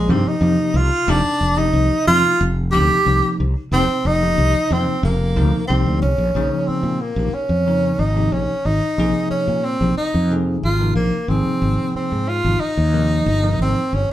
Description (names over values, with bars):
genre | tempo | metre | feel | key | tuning
electric jazz fusion | 91 BPM | 4/4 | straight | Bb dorian | A4 = 440 Hz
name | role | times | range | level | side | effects
breathy tenor saxophone | melody | 0.0-14.1 s | Ab3 to G4 | -20 LUFS | equal | none
fretless electric bass | bass | 0.0-14.1 s | F1 to Bb2 | -19 LUFS | equal | none
bell-like tine electric piano | accompaniment | 0.1-14.0 s | C3 to Bb4 | -23 LUFS | left 1 dB | fast stereo tremolo
room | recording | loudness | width
moderate studio reverb, RT60 0.7 s | band playing live in one room | -16 LUFS | side -13 dB against mid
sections
0.0-6.3 A section; 6.3-14.1 B section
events
none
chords
0.0 Bbsus4; 1.1 F9sus4; 6.3 Bbm11; 11.3 Abmaj9